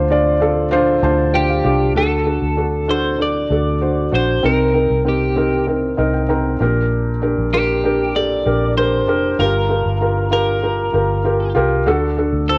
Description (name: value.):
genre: piano-driven pop.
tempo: 97 BPM.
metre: 4/4.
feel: straight.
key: unclear.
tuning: A4 = 441 Hz.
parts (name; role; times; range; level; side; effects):
felt-muted upright piano; accompaniment; 0.0-12.6 s; G2 to Bb5; -20 LUFS; equal; cassette tape.
vintage muted fingered electric bass; bass; 0.0-12.6 s; F1 to D2; -23 LUFS; equal; none.
twelve-string electric guitar; melody; 1.4-12.6 s; G4 to D5; -23 LUFS; equal; cassette tape.
room: moderate spring reverb, RT60 1.3 s, small room ambience.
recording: home recording on cassette.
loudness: -17 LUFS.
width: mono.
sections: 0.0-2.0 A section; 2.0-12.6 B section.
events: felt piano fill 0.7-2.0, 5.7-6.9.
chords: 0.0 Dm7; 2.0 D; 4.4 Cm7; 6.6 Bb6; 9.4 Gm7; 11.9 D.